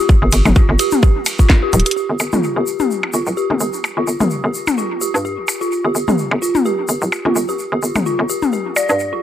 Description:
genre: minimal techno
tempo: 128 BPM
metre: 4/4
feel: swing 55% on 16ths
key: G minor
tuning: A4 = 441 Hz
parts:
  - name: electronic kick drum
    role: drums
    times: 0.1-1.6 s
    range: none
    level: -10 LUFS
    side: equal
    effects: none
  - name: egg shaker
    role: percussion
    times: 0.1-9.1 s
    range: none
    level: -26 LUFS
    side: left 2 dB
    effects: none
  - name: dark detuned synth bell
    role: riff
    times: 0.2-9.2 s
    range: F4 to D5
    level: -20 LUFS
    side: equal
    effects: chorus, phaser, sidechain pumping, low-pass filter, dub echo
  - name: hollow knocking FM bass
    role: bass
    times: 0.2-9.2 s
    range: D1 to G2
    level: -18 LUFS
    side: equal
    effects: sidechain pumping, high-pass filter
  - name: garage drum kit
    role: drums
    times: 0.3-2.0 s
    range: hi-hat, ride cymbal, snare drum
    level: -20 LUFS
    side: right 1 dB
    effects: none
  - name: electronic toms and percussion blips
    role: percussion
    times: 0.5-8.9 s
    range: none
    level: -20 LUFS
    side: left 3 dB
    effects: dub echo
room: light reverb, digital ambience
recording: echo-heavy mix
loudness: -14 LUFS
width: side -11 dB against mid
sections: 0.0-2.0 A section; 2.0-9.2 B section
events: drop 0.0-2.0; drum fill 1.7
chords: none

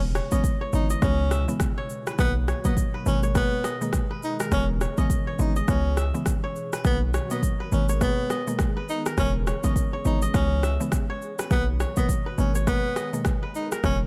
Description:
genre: afrobeats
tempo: 103 BPM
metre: 4/4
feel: swing 58% on 16ths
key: unclear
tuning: A4 = 440 Hz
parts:
  - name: mallet-like synth pluck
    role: accompaniment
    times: 0.0-14.1 s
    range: B2 to B3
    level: -33 LUFS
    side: equal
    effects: chorus
  - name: hollow soft pad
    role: sustained chords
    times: 0.0-14.1 s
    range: B2 to A#4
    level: -39 LUFS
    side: equal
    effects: none
  - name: hard-hitting 808-style bass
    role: bass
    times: 0.0-14.1 s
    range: E1 to C#2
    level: -27 LUFS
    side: equal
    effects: none
  - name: afro-pop drum kit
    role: drums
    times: 0.1-14.0 s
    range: kick drum, rim click, shaker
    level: -29 LUFS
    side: equal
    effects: none
  - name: kora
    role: riff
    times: 0.2-14.1 s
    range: A#4 to E5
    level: -37 LUFS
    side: equal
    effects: digital delay
  - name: breathy tenor saxophone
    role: melody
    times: 0.3-14.0 s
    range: B3 to D#4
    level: -33 LUFS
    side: equal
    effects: digital delay
room: little or no reverb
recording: none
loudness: -25 LUFS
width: mono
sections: 0.0-14.1 A section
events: none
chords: 0.0 E6; 1.0 C#m7; 2.2 Bmaj7; 3.1 G#madd9; 4.5 E6; 5.7 C#m7; 6.8 Bmaj7; 7.7 G#madd9; 9.2 E6; 10.3 C#m7; 11.5 Bmaj7; 12.4 G#madd9

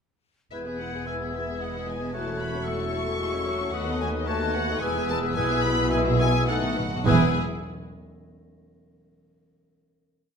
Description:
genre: quick classical-period movement for symphony orchestra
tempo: 102-114 BPM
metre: 3/4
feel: rubato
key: E major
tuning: A4 = 440 Hz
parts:
  - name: warm studio violin section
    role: melody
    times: 0.5-7.4 s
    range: E5 to C#6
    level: -32 LUFS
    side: left 3 dB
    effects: none
  - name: hollow small flute group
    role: second line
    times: 0.5-7.4 s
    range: C#6 to G#6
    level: -35 LUFS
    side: left 3 dB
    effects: none
  - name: warm clarinet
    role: second line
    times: 0.5-7.3 s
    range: F#4 to B4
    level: -37 LUFS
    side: left 2 dB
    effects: none
  - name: warm oboe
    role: second line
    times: 0.5-7.3 s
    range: B4 to E5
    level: -37 LUFS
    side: left 2 dB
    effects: none
  - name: warm studio violin section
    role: second line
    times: 0.5-7.4 s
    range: F#4 to E5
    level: -37 LUFS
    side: left 3 dB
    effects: none
  - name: dark bassoon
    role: accompaniment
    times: 0.5-7.3 s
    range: F#3 to B3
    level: -34 LUFS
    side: right 1 dB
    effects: none
  - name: dark studio viola section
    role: accompaniment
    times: 0.5-7.4 s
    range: G#3 to G#4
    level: -33 LUFS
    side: left 1 dB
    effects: none
  - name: dark French horn section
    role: sustained chords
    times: 0.5-7.3 s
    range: A3 to A4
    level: -32 LUFS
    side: left 5 dB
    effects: none
  - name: dark studio double bass section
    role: bass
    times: 0.5-7.4 s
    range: E1 to D#2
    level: -31 LUFS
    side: right 4 dB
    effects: none
  - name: warm studio cello section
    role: bass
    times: 0.5-7.4 s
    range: D#2 to B2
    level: -31 LUFS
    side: right 3 dB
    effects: none
  - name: timpani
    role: percussion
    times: 6.5-7.3 s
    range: E2 to B2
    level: -34 LUFS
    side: right 1 dB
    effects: none
room: wet recital hall reverb, RT60 1.3 s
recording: none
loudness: -23 LUFS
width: side -6 dB against mid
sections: 0.5-7.1 A section; 7.1-8.7 final chord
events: timpani fill 6.5-7.1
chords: 0.5 E; 2.1 F#m7/E; 3.7 B7/D#; 4.8 E; 5.4 E/B; 6.5 B7; 7.1 E

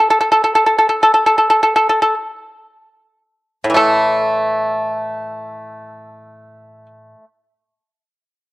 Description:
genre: chinese traditional, Chinese solo plucked strings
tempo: 40-51 BPM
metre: 4/4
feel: rubato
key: unclear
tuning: A4 = 437 Hz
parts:
  - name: pipa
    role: solo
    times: 0.0-7.2 s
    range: A2 to A4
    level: -13 LUFS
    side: equal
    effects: cassette tape
room: moderate spring reverb, RT60 1.4 s, small room ambience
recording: home recording on cassette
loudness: -12 LUFS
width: side -18 dB against mid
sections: 0.0-3.8 A section; 3.8-8.5 B section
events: slowing down 0.0-3.8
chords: none

